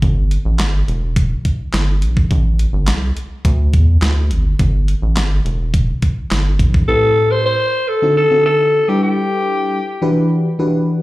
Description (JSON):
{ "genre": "early-eighties boogie funk", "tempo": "105 BPM", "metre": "4/4", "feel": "straight", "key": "A dorian", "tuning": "A4 = 440 Hz", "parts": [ { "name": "rubbery square bass", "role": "bass", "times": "0.0-6.8 s", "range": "E1 to E2", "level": "-14 LUFS", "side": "equal", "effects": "none" }, { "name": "crisp 8-bit digital drum machine", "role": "drums", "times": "0.0-6.9 s", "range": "handclaps, hi-hat, kick drum, snare drum", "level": "-17 LUFS", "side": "equal", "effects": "none" }, { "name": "raspy alto saxophone", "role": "melody", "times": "6.9-10.1 s", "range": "G4 to C5", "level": "-14 LUFS", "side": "left 1 dB", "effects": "slapback echo" }, { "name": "mellow FM electric piano", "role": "accompaniment", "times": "6.9-11.0 s", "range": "A2 to B4", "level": "-16 LUFS", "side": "equal", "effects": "chorus, slapback echo" } ], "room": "little or no reverb", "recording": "live gig heard through the venue's PA, club reverb", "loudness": "-13 LUFS", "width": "side -18 dB against mid", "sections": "0.0-6.9 A section; 6.9-11.0 B section", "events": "none", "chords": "0.0 Gsus2; 0.9 Em; 2.3 Am7; 3.5 Dsus2; 4.3 Gsus2; 5.5 Em; 6.9 Am9; 8.0 D7b9; 8.9 G69; 10.0 Em9" }